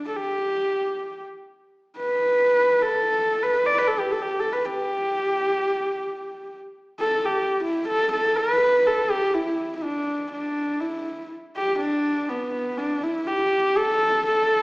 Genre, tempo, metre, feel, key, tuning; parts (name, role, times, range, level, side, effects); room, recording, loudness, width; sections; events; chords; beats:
mongolian traditional; 122 BPM; 4/4; straight; G gong mode; A4 = 438 Hz
warm horsehead fiddle; solo; 0.0-14.6 s; B3 to D5; -21 LUFS; equal
wet recital hall reverb, RT60 1.3 s; recorded in a church or concert hall, small speaker sound; -21 LUFS; side -23 dB against mid
0.0-7.9 A section; 7.9-14.6 B section
| 0.02 0.51 1.00 1.49 | 1.98 2.47 2.96 3.45 | 3.94 4.43 4.92 5.41 | 5.90 6.39 6.88 7.37 | 7.86 8.35 8.84 9.33 | 9.82 10.31 10.80 11.29 | 11.79 12.28 12.77 13.26 | 13.75 14.24